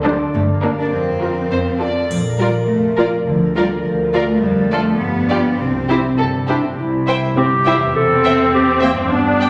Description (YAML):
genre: cinematic, playful, whimsical film cue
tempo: 103 BPM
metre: 2/4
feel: straight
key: Bb major, C major from 4.4 s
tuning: A4 = 440 Hz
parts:
  - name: warm studio violin section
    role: melody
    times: 0.0-9.5 s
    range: Bb4 to G5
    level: -29 LUFS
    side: equal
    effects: none
  - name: rich studio violin section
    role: second line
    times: 0.0-9.5 s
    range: G4 to E5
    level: -27 LUFS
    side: equal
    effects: none
  - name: concert harp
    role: arpeggios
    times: 0.0-9.5 s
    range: E2 to D5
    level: -24 LUFS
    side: equal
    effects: none
  - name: warm studio double bass section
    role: bass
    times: 0.0-9.5 s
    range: E1 to G2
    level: -28 LUFS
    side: equal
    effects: none
  - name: warm studio viola section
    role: accompaniment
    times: 0.1-9.5 s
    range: C4 to F4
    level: -22 LUFS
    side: equal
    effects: none
  - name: warm studio cello section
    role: bass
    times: 0.1-9.5 s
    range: C2 to D4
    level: -24 LUFS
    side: equal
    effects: none
  - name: triangle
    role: percussion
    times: 2.1-3.2 s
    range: none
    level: -39 LUFS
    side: equal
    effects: none
  - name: clear clarinet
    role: second line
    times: 6.5-9.5 s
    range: Bb3 to A4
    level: -19 LUFS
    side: equal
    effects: none
room: wet scoring stage reverb, RT60 1.6 s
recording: none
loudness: -17 LUFS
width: mono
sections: 0.0-6.8 A section; 6.8-9.5 B section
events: none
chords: 0.3 Gm; 0.9 Fsus4; 1.5 F; 2.1 Bb5; 3.3 Bb/D; 4.4 Dm7/F; 5.0 G7; 5.6 C; 8.0 C/E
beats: 0.34 | 0.93 1.51 | 2.10 2.69 | 3.27 3.85 | 4.43 5.01 | 5.59 6.19 | 6.79 7.37 | 7.95 8.53 | 9.11